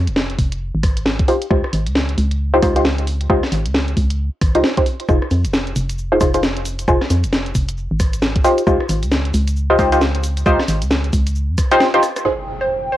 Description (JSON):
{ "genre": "UK garage, two-step garage", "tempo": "134 BPM", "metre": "4/4", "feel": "swing 60% on 16ths", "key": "unclear", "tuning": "A4 = 444 Hz", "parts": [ { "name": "organ-like FM bass", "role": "bass", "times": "0.0-11.6 s", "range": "F1 to F2", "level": "-19 LUFS", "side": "equal", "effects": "none" }, { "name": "house drum kit", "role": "drums", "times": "0.1-13.0 s", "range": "cabasa, hi-hat, rim click, snare drum", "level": "-22 LUFS", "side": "equal", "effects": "overdrive, low-pass filter on hats, cassette tape, low-pass filter on snare, low-pass filter on cymbals, low-pass filter on perc, low-pass filter on room" }, { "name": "electronic kick drum", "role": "drums", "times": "0.4-11.7 s", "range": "none", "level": "-18 LUFS", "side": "equal", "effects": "overdrive, cassette tape" }, { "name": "punchy chord stab", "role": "stabs", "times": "1.3-12.4 s", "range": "Eb4 to C5", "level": "-16 LUFS", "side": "equal", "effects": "chorus, cassette tape, analog delay" }, { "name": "hollow square pluck", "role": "melody", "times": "12.2-13.0 s", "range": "Ab4 to C5", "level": "-21 LUFS", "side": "right 2 dB", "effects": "wide subtle chorus, cassette tape" }, { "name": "airy breathy pad", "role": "sustained chords", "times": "12.3-13.0 s", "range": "G5", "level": "-26 LUFS", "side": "left 1 dB", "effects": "chorus, sidechain pumping, cassette tape" }, { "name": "impact", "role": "sound effects", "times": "12.3-13.0 s", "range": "none", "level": "-30 LUFS", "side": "equal", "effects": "none" } ], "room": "light reverb", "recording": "home recording on cassette", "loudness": "-15 LUFS", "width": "side -13 dB against mid", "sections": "0.0-12.3 A section", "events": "filter sweep on synth stab 0.0-12.3; drum fill 11.9-12.3; impact 12.3-13.0", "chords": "0.0 Fm; 1.3 Dbmaj9#11; 5.1 Fm7; 8.4 Dbmaj9#11; 12.3 Fm7" }